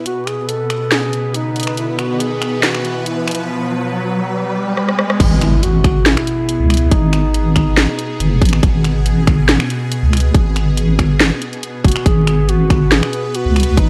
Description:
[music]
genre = deep dubstep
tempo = 140 BPM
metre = 4/4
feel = half-time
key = G# minor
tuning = A4 = 440 Hz
[part]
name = dark duduk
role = melody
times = 0.0-8.4, 11.8-13.9 s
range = D#4 to A4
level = -24 LUFS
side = equal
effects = dub echo
[part]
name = bowed-like drone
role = sustained chords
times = 0.0-13.9 s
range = B2 to B4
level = -25 LUFS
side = equal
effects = built-in reverb, phaser
[part]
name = riser and impact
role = sound effects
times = 0.4-6.9 s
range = none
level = -25 LUFS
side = equal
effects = none
[part]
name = garage drum kit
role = drums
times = 0.1-13.9 s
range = crash cymbal, finger snaps, hi-hat, rim click, snare drum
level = -20 LUFS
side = equal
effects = overdrive, high-pass filter on hats, studio reverb, high-pass filter on snare, high-pass filter on cymbals
[part]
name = deep soft wobble bass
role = bass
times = 5.2-13.9 s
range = F#1 to C#2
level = -16 LUFS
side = equal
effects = chorus, tube saturation
[part]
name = electronic kick drum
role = drums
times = 5.2-13.9 s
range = none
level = -15 LUFS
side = equal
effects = overdrive, studio reverb
[sound]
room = light reverb, digital ambience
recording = vinyl crackle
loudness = -15 LUFS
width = mono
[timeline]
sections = 0.0-5.2 A section; 5.2-13.9 B section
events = build-up 0.0-5.2; riser 0.4-5.2; drum fill 4.8-5.2; drop 5.2-13.9; impact 5.2-6.9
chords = 0.0 N.C.; 5.2 G#m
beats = | 0.06 0.49 0.92 1.34 | 1.77 2.20 2.63 3.06 | 3.49 3.92 4.34 4.77 | 5.20 5.63 6.06 6.49 | 6.92 7.34 7.77 8.20 | 8.63 9.06 9.49 9.92 | 10.35 10.77 11.20 11.63 | 12.06 12.49 12.92 13.35 | 13.77

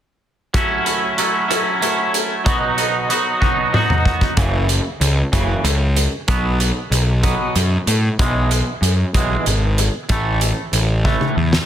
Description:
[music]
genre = quiet-loud alternative rock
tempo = 63 BPM (dotted quarters)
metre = 6/8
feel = straight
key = unclear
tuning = A4 = 439 Hz
[part]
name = twangy electric guitar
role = arpeggios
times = 0.5-11.6 s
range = F#2 to F#4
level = -20 LUFS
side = right 2 dB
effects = wide subtle chorus, tape echo
[part]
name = loose indie drum kit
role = drums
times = 0.5-11.7 s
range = hi-hat, kick drum, snare drum, toms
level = -20 LUFS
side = equal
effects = soft clipping on snare
[part]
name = fuzz picked electric bass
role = bass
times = 4.4-11.6 s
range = F#1 to A2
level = -17 LUFS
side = equal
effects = overdrive
[sound]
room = little or no reverb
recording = dense, heavily limited modern master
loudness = -15 LUFS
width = side -10 dB against mid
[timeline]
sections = 0.5-4.4 A section; 4.4-11.7 B section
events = drum fill 3.4-4.4, 11.0-11.7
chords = 0.5 F#m7; 2.5 B; 4.4 F#5; 6.3 B5; 8.2 E/B; 10.1 A5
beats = | 0.54 1.50 | 2.46 3.42 | 4.37 5.33 | 6.28 7.24 | 8.19 9.14 | 10.10 11.05

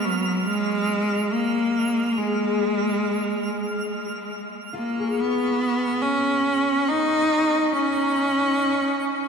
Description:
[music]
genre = ambient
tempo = free time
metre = none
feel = none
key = unclear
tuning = A4 = 441 Hz
[part]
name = clear cello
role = melody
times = 0.0-9.3 s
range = F#3 to D#4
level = -21 LUFS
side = equal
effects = ping-pong delay
[part]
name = twinkling granular texture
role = texture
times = 0.0-9.3 s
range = C#6 to E#6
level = -33 LUFS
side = equal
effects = built-in reverb
[part]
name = concert harp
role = arpeggios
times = 2.2-7.3 s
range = E#4 to G#4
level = -31 LUFS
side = left 6 dB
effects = ping-pong delay
[sound]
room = wet huge ambient reverb, RT60 7.5 s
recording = none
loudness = -20 LUFS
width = side -6 dB against mid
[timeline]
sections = 0.0-9.3 A section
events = fade-out on synth texture 0.0-9.3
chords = 0.0 N.C.; 4.7 C#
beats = free time

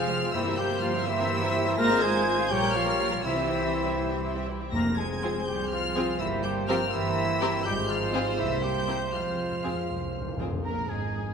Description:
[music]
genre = classical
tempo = 82 BPM (dotted quarters)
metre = 6/8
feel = straight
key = F minor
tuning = A4 = 440 Hz
[part]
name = rich studio violin section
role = melody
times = 0.0-11.3 s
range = Ab4 to Bb6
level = -34 LUFS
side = left 2 dB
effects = none
[part]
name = mellow clarinet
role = second line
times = 0.0-10.4 s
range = E4 to Bb4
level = -34 LUFS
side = left 2 dB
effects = none
[part]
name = mellow small flute group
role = second line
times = 0.0-10.4 s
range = E5 to Bb5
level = -33 LUFS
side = equal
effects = none
[part]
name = warm studio violin section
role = second line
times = 0.0-11.3 s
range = E4 to F5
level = -37 LUFS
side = left 3 dB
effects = none
[part]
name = warm symphonic viola section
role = accompaniment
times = 0.0-11.3 s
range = G3 to Bb4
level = -35 LUFS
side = right 1 dB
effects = none
[part]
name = warm French horn section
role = sustained chords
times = 0.0-11.3 s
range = Ab3 to Ab4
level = -36 LUFS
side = left 4 dB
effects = none
[part]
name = concert harp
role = arpeggios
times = 0.0-11.3 s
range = F2 to C6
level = -37 LUFS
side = left 7 dB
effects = none
[part]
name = bright trumpet section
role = stabs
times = 0.0-10.4 s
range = C5 to Db5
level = -33 LUFS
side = right 4 dB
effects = none
[part]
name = rich studio double bass section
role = bass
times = 0.0-11.3 s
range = F1 to F2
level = -35 LUFS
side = right 4 dB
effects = none
[part]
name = rich symphonic cello section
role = bass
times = 0.0-11.3 s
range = Ab2 to Bb3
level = -35 LUFS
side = right 2 dB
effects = none
[part]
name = timpani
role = percussion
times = 4.7-5.4, 9.1-10.6 s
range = F2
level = -38 LUFS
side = left 1 dB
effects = none
[part]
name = warm oboe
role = second line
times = 10.7-11.3 s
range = Ab5 to Bb5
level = -36 LUFS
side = equal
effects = none
[sound]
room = wet concert hall reverb, RT60 2.2 s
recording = none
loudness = -25 LUFS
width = side -6 dB against mid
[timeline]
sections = 0.0-10.6 A section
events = timpani fill 9.1-10.6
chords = 0.3 C7/G; 1.8 Fm/Ab; 2.5 Gdim/Bb; 3.2 C; 4.7 Fm; 6.2 C7/G; 7.7 Fm/Ab; 8.4 C7; 9.1 Fm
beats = | 0.34 1.06 | 1.78 2.50 | 3.24 3.98 | 4.73 5.47 | 6.20 6.93 | 7.65 8.38 | 9.12 9.89 | 10.64

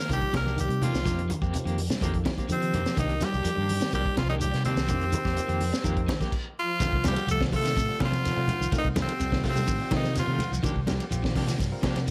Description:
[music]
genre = afrobeat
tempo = 125 BPM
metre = 4/4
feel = straight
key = unclear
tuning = A4 = 439 Hz
[part]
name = raspy tenor saxophone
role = melody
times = 0.0-10.5 s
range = C4 to Bb4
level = -33 LUFS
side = equal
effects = plate reverb
[part]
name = trombone with bucket mute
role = second line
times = 0.0-10.5 s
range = C3 to Bb3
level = -38 LUFS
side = equal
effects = none
[part]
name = electric guitar at the edge of break-up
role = arpeggios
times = 0.0-12.1 s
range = C3 to G3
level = -37 LUFS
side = equal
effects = none
[part]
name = barky tine electric piano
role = accompaniment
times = 0.1-12.1 s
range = F3 to C5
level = -43 LUFS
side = equal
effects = none
[part]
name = electric guitar at the edge of break-up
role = stabs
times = 0.1-12.0 s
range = Eb3 to G4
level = -39 LUFS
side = equal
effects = tremolo, plate reverb
[part]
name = fingered electric bass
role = bass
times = 0.1-12.1 s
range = Bb1 to F3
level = -32 LUFS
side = equal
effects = none
[part]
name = crunchy breakbeat drum kit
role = drums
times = 0.1-12.1 s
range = crash cymbal, hi-hat, kick drum, ride cymbal, snare drum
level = -34 LUFS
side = equal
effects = none
[part]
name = shekere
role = percussion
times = 0.1-12.1 s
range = none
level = -38 LUFS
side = equal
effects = none
[part]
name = congas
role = percussion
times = 0.3-12.1 s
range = none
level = -36 LUFS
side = equal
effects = none
[sound]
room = moderate studio reverb, RT60 0.8 s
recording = none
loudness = -27 LUFS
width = mono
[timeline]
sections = 0.0-6.8 A section; 6.8-12.1 B section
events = stop 6.3-6.8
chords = 0.0 Cm9; 1.1 F9sus4; 3.0 Cm9; 4.9 F9sus4; 6.8 F7/C; 10.6 Ebmaj9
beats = 0.10 0.58 | 1.06 1.54 2.02 2.50 | 2.97 3.45 3.93 4.41 | 4.89 5.37 5.85 6.33 | 6.81 7.29 7.77 8.25 | 8.73 9.21 9.69 10.16 | 10.64 11.12 11.60 12.08

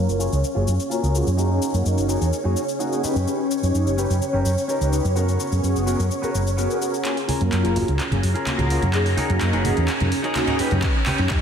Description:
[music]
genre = filtered disco house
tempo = 127 BPM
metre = 4/4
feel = straight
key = F# major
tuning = A4 = 438 Hz
[part]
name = mellow synth brass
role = accompaniment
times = 0.0-11.4 s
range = F#3 to C#5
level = -26 LUFS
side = equal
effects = chorus, phaser, sidechain pumping, low-pass filter
[part]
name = string machine, full ensemble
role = sustained chords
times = 0.0-11.4 s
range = C#4 to A#5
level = -26 LUFS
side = equal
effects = phaser, ensemble chorus, sidechain pumping, low-pass filter
[part]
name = hollow-body short-scale fingered electric bass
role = bass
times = 0.0-11.4 s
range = F#1 to F#2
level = -21 LUFS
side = equal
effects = sidechain pumping, low-pass filter
[part]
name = punchy analog drum machine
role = drums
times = 0.1-11.4 s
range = cabasa, handclaps, hi-hat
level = -30 LUFS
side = left 1 dB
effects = sidechain pumping on perc, high-pass filter on perc, high-pass filter on snare, sidechain pumping on hats, high-pass filter on hats
[part]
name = electric guitar at the edge of break-up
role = riff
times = 0.2-11.3 s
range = B3 to F#5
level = -30 LUFS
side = equal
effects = sidechain pumping, low-pass filter
[part]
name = tambourine and congas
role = percussion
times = 7.1-11.4 s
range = none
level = -29 LUFS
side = right 2 dB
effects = sidechain pumping on perc, low-pass filter on perc
[part]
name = electronic kick drum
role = drums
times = 10.8-11.4 s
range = none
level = -22 LUFS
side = equal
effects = none
[sound]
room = moderate lush hall reverb, RT60 1.7 s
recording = dreamy mix soaked in reverb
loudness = -19 LUFS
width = side -8 dB against mid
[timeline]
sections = 0.0-7.1 A section; 7.1-11.4 B section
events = filter sweep 0.0-7.1, 7.1-11.4; clean electric guitar fill 2.6-3.3; build-up 7.1-11.4; drum fill 7.1-11.4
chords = 0.0 F#maj9; 1.4 Emaj9#11/F# (rootless); 3.0 D#7b13/F#; 5.2 G#m9/F#; 7.1 F#maj9; 8.9 Emaj9#11/F# (rootless); 10.6 D#7b13/F#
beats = 0.44 0.91 | 1.38 1.86 2.33 2.80 | 3.27 3.75 4.22 4.69 | 5.16 5.64 6.11 6.58 | 7.05 7.53 8.00 8.47 | 8.94 9.41 9.89 10.36 | 10.83 11.30

